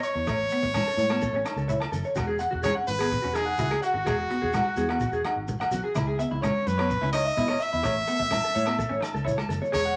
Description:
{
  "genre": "highlife guitar band",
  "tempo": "127 BPM",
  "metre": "4/4",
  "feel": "straight",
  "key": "unclear",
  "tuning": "A4 = 440 Hz",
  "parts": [
    { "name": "brilliant trumpet", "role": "melody", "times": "0.0-10.0 s", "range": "F#4 to E5", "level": "-30 LUFS", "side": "equal", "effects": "none" },
    { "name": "electric guitar through a small old amp", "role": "arpeggios", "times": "0.0-9.9 s", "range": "E4 to C#6", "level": "-32 LUFS", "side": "equal", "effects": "none" },
    { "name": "crunchy breakbeat drum kit", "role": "drums", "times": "0.0-9.8 s", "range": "hi-hat, kick drum, rim click", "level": "-40 LUFS", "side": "equal", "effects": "none" },
    { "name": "shekere", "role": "percussion", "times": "0.0-9.9 s", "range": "none", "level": "-40 LUFS", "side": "equal", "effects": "none" },
    { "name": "fingered electric bass", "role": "bass", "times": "0.2-10.0 s", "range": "E1 to B2", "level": "-34 LUFS", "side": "equal", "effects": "none" },
    { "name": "electric guitar at the edge of break-up", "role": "accompaniment", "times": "0.3-9.9 s", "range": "G#3 to E4", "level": "-37 LUFS", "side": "equal", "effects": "none" },
    { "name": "agogo bells", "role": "percussion", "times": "0.3-9.9 s", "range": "none", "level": "-42 LUFS", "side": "equal", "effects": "none" },
    { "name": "congas", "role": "percussion", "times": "0.3-9.7 s", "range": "none", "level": "-38 LUFS", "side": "equal", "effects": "none" }
  ],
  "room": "moderate studio reverb, RT60 0.8 s",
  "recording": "none",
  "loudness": "-26 LUFS",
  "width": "mono",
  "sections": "0.0-9.7 A section",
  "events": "drum fill 9.1-9.7",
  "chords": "0.3 A; 2.2 Eadd9; 6.0 C#madd9; 7.8 A",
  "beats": "| 0.28 0.75 1.22 1.70 | 2.17 2.64 3.11 3.59 | 4.06 4.53 5.01 5.48 | 5.95 6.42 6.90 7.37 | 7.84 8.32 8.79 9.26 | 9.74"
}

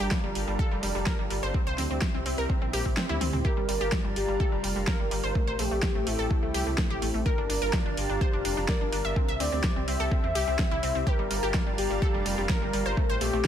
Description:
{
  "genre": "progressive house",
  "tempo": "126 BPM",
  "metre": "4/4",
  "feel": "straight",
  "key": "G dorian",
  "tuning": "A4 = 440 Hz",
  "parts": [
    { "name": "lush unison pad", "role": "sustained chords", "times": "0.0-13.5 s", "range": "G3 to A5", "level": "-36 LUFS", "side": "equal", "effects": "chorus, sidechain pumping" },
    { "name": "wide unison pluck", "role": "arpeggios", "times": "0.0-13.4 s", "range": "G3 to E5", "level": "-32 LUFS", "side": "equal", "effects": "sidechain pumping, ping-pong delay" },
    { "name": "dark detuned saw bass", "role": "bass", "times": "0.0-13.4 s", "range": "F1 to E2", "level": "-32 LUFS", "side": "equal", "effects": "sidechain pumping" },
    { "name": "big-room dance drum kit", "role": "drums", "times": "0.1-13.5 s", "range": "hi-hat, snare drum, toms", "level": "-33 LUFS", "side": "equal", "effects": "overdrive, sidechain pumping on hats, studio reverb, sidechain pumping on toms" },
    { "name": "electronic kick drum", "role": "drums", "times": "0.1-13.5 s", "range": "none", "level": "-27 LUFS", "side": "equal", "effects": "studio reverb" },
    { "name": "warm velvety synth lead", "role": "melody", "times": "3.4-13.5 s", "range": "E4 to E5", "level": "-32 LUFS", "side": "left 1 dB", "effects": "chorus, sidechain pumping, ping-pong delay" }
  ],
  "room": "light reverb",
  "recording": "none",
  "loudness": "-25 LUFS",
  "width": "side -9 dB against mid",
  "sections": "0.0-13.5 A section",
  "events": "filter sweep on analog synth pad 0.0-13.5; kick drops out 3.0-3.4; drum fill 3.0-3.4",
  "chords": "0.0 Gm7; 1.5 C; 3.4 Gm7; 5.4 Am7; 7.3 Gm7; 9.2 C; 11.1 Gm7",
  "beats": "0.12 0.59 1.07 | 1.54 2.02 2.50 2.97 | 3.45 3.92 4.40 4.88 | 5.35 5.83 6.31 6.78 | 7.26 7.74 8.21 8.69 | 9.16 9.64 10.12 10.59 | 11.07 11.54 12.02 12.50 | 12.97 13.45"
}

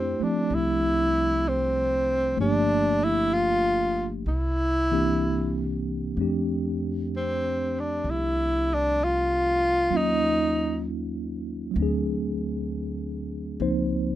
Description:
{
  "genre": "jazz ballad",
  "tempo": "64 BPM",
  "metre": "4/4",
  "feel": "swing 67% on 8ths",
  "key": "F major",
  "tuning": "A4 = 440 Hz",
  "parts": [
    { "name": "breathy tenor saxophone", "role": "melody", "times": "0.0-10.9 s", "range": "C4 to F4", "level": "-24 LUFS", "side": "equal", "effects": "none" },
    { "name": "mellow tine electric piano", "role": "accompaniment", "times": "0.0-14.2 s", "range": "E3 to C5", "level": "-28 LUFS", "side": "equal", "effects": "medium stereo tremolo" },
    { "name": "upright bass", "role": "bass", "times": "0.0-14.2 s", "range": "G1 to F2", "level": "-31 LUFS", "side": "equal", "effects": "none" }
  ],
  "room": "little or no reverb",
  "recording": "rough home demo mix",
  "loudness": "-23 LUFS",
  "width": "side -13 dB against mid",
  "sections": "0.0-6.2 A section; 6.2-14.2 A section",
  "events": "none",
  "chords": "0.0 Fmaj13; 2.4 Gm7; 4.3 C7; 6.2 F69; 9.9 Ebm7; 11.8 D7#11; 13.6 Dbmaj13",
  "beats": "0.51 1.45 | 2.38 3.32 4.26 5.22 | 6.18 7.12 8.05 8.99 | 9.91 10.84 11.76 12.69 | 13.61"
}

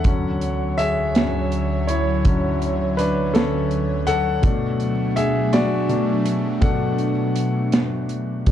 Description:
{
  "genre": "six-eight pop ballad",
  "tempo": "55 BPM (dotted quarters)",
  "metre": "6/8",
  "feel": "straight",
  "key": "unclear",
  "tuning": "A4 = 441 Hz",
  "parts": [
    { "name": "clear grand piano", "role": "accompaniment", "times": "0.0-8.5 s", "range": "B2 to F#5", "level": "-22 LUFS", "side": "left 3 dB", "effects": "plate reverb" },
    { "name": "modern studio drum kit", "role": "drums", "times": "0.0-8.5 s", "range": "hi-hat, kick drum, snare drum", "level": "-21 LUFS", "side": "right 1 dB", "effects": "none" },
    { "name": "airy breathy pad", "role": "sustained chords", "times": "0.1-8.5 s", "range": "D2 to C#5", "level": "-23 LUFS", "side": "right 2 dB", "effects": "chorus" }
  ],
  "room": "moderate studio reverb, RT60 0.6 s",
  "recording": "dark, warm production",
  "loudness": "-18 LUFS",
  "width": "side -10 dB against mid",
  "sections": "0.0-8.5 A section",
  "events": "grand piano solo 0.0-8.5",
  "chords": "0.0 Dmaj7; 4.4 Bm7",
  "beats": "| 0.05 1.15 | 2.25 3.34 | 4.43 5.53 | 6.62 7.73"
}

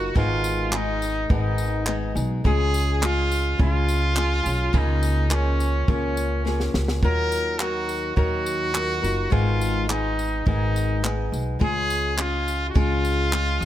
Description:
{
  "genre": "acoustic pop",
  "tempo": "105 BPM",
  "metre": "4/4",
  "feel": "straight",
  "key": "unclear",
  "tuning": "A4 = 444 Hz",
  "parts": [
    { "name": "clear trumpet", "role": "melody", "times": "0.0-13.7 s", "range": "Db4 to Bb4", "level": "-26 LUFS", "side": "equal", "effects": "digital delay" },
    { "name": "flamenco guitar", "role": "accompaniment", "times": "0.0-13.7 s", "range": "Ab2 to Bb4", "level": "-28 LUFS", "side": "left 4 dB", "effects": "none" },
    { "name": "upright bass", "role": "bass", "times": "0.0-13.7 s", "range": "Gb1 to Eb2", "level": "-24 LUFS", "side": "equal", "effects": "none" },
    { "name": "compact cocktail drum kit", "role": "drums", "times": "0.2-13.7 s", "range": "handclaps, kick drum, snare drum, tambourine", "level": "-25 LUFS", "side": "equal", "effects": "none" }
  ],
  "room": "little or no reverb",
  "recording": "none",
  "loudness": "-20 LUFS",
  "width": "side -12 dB against mid",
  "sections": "0.0-13.7 A section",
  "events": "drum fill 6.5-7.0",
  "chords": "0.2 Abm; 2.5 Db; 4.7 Bbm7/Db; 7.0 Ebmadd9; 9.3 Abm; 11.6 Db",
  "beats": "| 0.16 0.73 1.30 1.88 | 2.45 3.02 3.59 4.17 | 4.74 5.31 5.88 6.46 | 7.03 7.60 8.17 8.74 | 9.32 9.89 10.46 11.03 | 11.61 12.18 12.75 13.32"
}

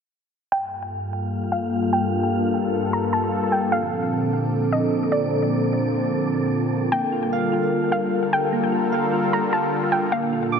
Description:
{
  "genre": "hip hop",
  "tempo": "150 BPM",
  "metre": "4/4",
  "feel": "half-time",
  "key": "G minor",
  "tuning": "A4 = 440 Hz",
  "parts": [
    { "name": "soft round pluck", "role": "melody", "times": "0.5-10.6 s", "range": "D5 to Bb5", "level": "-26 LUFS", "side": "equal", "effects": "chorus, low-pass filter, ping-pong delay" },
    { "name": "sweeping resonant pad", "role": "sustained chords", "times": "0.5-10.6 s", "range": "G2 to Bb4", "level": "-22 LUFS", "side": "left 1 dB", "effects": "lush chorus, low-pass filter" },
    { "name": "wind-like tuned noise texture", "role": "texture", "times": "1.0-10.6 s", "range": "Bb3 to D6", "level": "-31 LUFS", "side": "right 1 dB", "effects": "built-in reverb" },
    { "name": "soft electric-piano-like synth keys", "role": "arpeggios", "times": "6.9-10.6 s", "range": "Bb3 to D6", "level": "-25 LUFS", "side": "right 3 dB", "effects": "chorus, low-pass filter, ping-pong delay" }
  ],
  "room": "moderate lush hall reverb, RT60 2.6 s",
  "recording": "none",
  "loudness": "-20 LUFS",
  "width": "side -6 dB against mid",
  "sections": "0.5-6.9 A section; 6.9-10.6 B section",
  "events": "filter sweep 0.5-6.9",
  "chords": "0.5 Gm7; 3.7 Bbmaj7; 6.9 Gm7",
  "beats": "| 0.52 0.92 1.32 1.72 | 2.12 2.52 2.92 3.32 | 3.72 4.12 4.52 4.92 | 5.32 5.72 6.12 6.52 | 6.92 7.32 7.72 8.12 | 8.52 8.92 9.32 9.72 | 10.12 10.52"
}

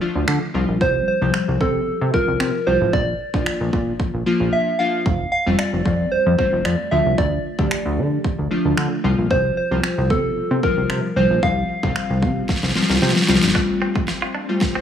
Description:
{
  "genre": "dance-pop",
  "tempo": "113 BPM",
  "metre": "4/4",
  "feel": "straight",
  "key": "F major",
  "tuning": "A4 = 441 Hz",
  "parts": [
    { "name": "glassy digital keys", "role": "accompaniment", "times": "0.0-14.8 s", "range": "F3 to G4", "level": "-23 LUFS", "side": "left 2 dB", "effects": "chorus, sidechain pumping" },
    { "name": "plucky analog bass", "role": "bass", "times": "0.2-13.5 s", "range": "F1 to D3", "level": "-21 LUFS", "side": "equal", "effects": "sidechain pumping" },
    { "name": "pop drum kit", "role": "drums", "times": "0.3-14.7 s", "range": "finger snaps, kick drum, snare drum", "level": "-23 LUFS", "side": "equal", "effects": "none" },
    { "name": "soft struck synth lead", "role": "melody", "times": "0.8-12.4 s", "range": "A4 to F5", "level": "-22 LUFS", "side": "right 1 dB", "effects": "chorus, tape echo" },
    { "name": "shimmering ambient pad", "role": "sustained chords", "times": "13.9-14.8 s", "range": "F3 to C5", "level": "-32 LUFS", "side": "equal", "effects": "chorus, built-in reverb, phaser, sidechain pumping" },
    { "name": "direct-recorded clean electric guitar", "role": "riff", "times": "13.6-14.8 s", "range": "C4 to F4", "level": "-26 LUFS", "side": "right 3 dB", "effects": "wide subtle chorus" }
  ],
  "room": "light reverb",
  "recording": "small room ambience",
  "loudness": "-17 LUFS",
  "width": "side -9 dB against mid",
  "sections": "0.0-13.6 A section; 13.6-14.8 B section",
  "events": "silent gap 4.5-5.1; drum fill 12.5-13.6, 13.6-14.8; build-up 13.6-14.8",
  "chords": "0.0 Dm; 0.5 Csus4; 2.9 Bb; 5.1 Fadd9; 6.9 Dm; 9.0 Csus4; 13.6 Fadd9",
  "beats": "0.28 | 0.81 1.34 1.87 2.40 | 2.93 3.46 4.00 4.53 | 5.06 5.59 6.12 6.65 | 7.18 7.71 8.24 8.77 | 9.30 9.84 10.37 10.90 | 11.43 11.96 12.49 13.02 | 13.55 14.08 14.61"
}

